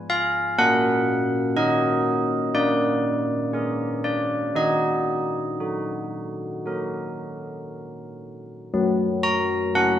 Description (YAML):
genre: classical, tune for church bells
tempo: 57-62 BPM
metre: 4/4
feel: straight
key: Eb minor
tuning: A4 = 440 Hz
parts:
  - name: carillon bells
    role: solo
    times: 0.0-10.0 s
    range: F#3 to A#5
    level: -21 LUFS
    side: equal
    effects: none
room: moderate concert hall reverb, RT60 1.8 s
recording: dark, warm production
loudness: -21 LUFS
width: side -10 dB against mid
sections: 0.0-8.7 A section; 8.7-10.0 B section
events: none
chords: 0.0 Fdim/Ab; 0.6 Ebm/Bb; 2.5 Bb7; 4.6 Ebm; 8.7 F#